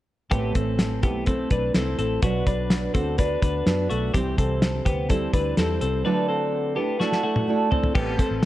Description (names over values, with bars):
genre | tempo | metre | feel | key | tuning
jangly indie pop | 126 BPM | 4/4 | straight | A dorian | A4 = 439 Hz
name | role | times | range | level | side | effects
fingerpicked steel-string acoustic guitar | accompaniment | 0.3-8.5 s | A2 to C5 | -27 LUFS | right 5 dB | none
twelve-string electric guitar | arpeggios | 0.3-8.5 s | A3 to B4 | -26 LUFS | left 3 dB | none
vintage muted fingered electric bass | bass | 0.3-8.5 s | A1 to F#2 | -28 LUFS | equal | none
cloth-damped thuddy drum kit | drums | 0.3-8.5 s | crash cymbal, hi-hat, kick drum, snare drum, toms | -23 LUFS | equal | none
room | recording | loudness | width
light reverb, studio reverb | none | -21 LUFS | side -14 dB against mid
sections
0.3-8.0 A section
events
drum fill 7.0-8.0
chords
0.3 Amadd9; 2.2 Bm; 4.1 C; 6.1 Dadd9